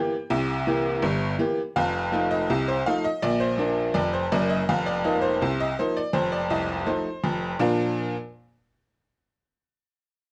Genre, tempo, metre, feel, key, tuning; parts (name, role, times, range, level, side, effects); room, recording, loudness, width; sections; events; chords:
ragtime piano; 82 BPM; 2/4; straight; Bb major; A4 = 445 Hz
tack piano; solo; 0.0-8.1 s; F1 to G5; -25 LUFS; equal
moderate studio reverb, RT60 0.8 s; dark, warm production; -25 LUFS; mono
0.0-7.6 A section; 7.6-9.1 B section
0.0 C7; 1.7 F7; 3.2 Bb; 4.7 F7sus4; 6.1 F7; 7.6 Bb